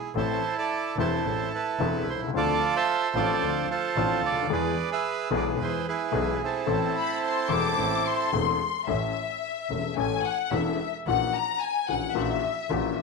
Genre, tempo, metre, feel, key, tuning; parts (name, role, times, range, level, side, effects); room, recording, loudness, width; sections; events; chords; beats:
tango; 110 BPM; 4/4; rubato; A harmonic minor; A4 = 440 Hz
bandoneon; melody; 0.0-8.3 s; C4 to E5; -26 LUFS; right 6 dB
clear double bass; bass; 0.1-12.9 s; E1 to E2; -33 LUFS; right 4 dB
warm baby grand piano; accompaniment; 0.2-12.9 s; E1 to A4; -29 LUFS; left 8 dB
warm studio violin section; second line; 7.0-13.0 s; E5 to D6; -28 LUFS; left 8 dB
moderate echo chamber reverb, RT60 1.3 s; 1960s-style stereo with parts hard left and right; -24 LUFS; side -3 dB against mid
0.0-8.9 A section; 8.9-13.0 B section
violin section solo 8.9-13.0
0.2 Am; 2.3 Dm7; 4.5 E; 6.7 Am; 8.9 A; 11.1 F#7/A#
| 0.15 0.70 1.25 1.79 | 2.34 2.88 3.42 3.96 | 4.50 5.05 5.59 6.13 | 6.68 7.23 7.77 8.33 | 8.88 9.43 9.98 10.53 | 11.07 11.62 12.16 12.71